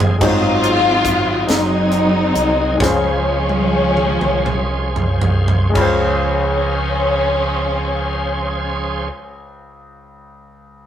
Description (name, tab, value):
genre	slow gospel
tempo	37-48 BPM (dotted quarters)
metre	6/8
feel	straight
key	Db major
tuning	A4 = 440 Hz
part	warm studio string section	melody	0.0-9.1 s	F3 to F4	-18 LUFS	left 1 dB	slapback echo
part	clear concert grand piano	accompaniment	0.0-10.9 s	Db2 to C5	-22 LUFS	left 2 dB	none
part	bright tonewheel organ	sustained chords	0.0-9.1 s	Db3 to C5	-24 LUFS	right 2 dB	slow rotary speaker, overdrive, chorus vibrato
part	fingered electric bass with an envelope filter	bass	0.0-9.1 s	Gb1 to Db2	-22 LUFS	right 1 dB	none
part	crisp fusion drum kit	drums	0.0-6.0 s	crash cymbal, hi-hat, kick drum, snare drum, toms	-19 LUFS	right 1 dB	none
room	moderate stone room reverb, RT60 1.2 s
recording	rough rehearsal-room recording, tube saturation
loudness	-14 LUFS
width	side -10 dB against mid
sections	0.2-5.8 A section; 5.8-9.0 B section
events	drum fill 0.0, 2.8-5.8; slowing down 0.2-5.8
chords	0.2 Ab7; 2.8 Dbmaj7